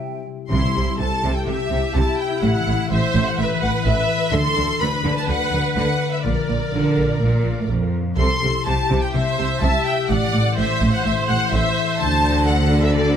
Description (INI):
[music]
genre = cinematic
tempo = 126 BPM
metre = 4/4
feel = straight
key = C lydian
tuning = A4 = 440 Hz
[part]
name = concert harp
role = arpeggios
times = 0.0-13.2 s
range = A2 to D6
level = -25 LUFS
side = left 9 dB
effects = none
[part]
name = warm symphonic violin section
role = melody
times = 0.5-13.2 s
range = D5 to C6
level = -25 LUFS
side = left 3 dB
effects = none
[part]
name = clear symphonic violin section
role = second line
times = 0.5-13.2 s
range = D5 to C6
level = -28 LUFS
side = equal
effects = none
[part]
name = rich symphonic viola section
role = accompaniment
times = 0.5-13.2 s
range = E4 to E5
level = -25 LUFS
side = right 2 dB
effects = none
[part]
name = clear chamber double bass section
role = bass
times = 0.5-13.2 s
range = A1 to D2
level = -23 LUFS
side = right 2 dB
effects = none
[part]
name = rich symphonic cello section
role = bass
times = 0.5-13.2 s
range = F2 to D3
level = -24 LUFS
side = right 2 dB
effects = none
[part]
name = timpani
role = percussion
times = 0.5-1.2 s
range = C3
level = -27 LUFS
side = left 1 dB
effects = none
[sound]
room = light reverb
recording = close, detailed microphones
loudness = -17 LUFS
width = side -8 dB against mid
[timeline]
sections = 0.5-13.2 A section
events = none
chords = 0.0 C; 2.4 Am; 4.3 D; 6.2 Bb; 8.2 C; 10.1 Am; 12.0 D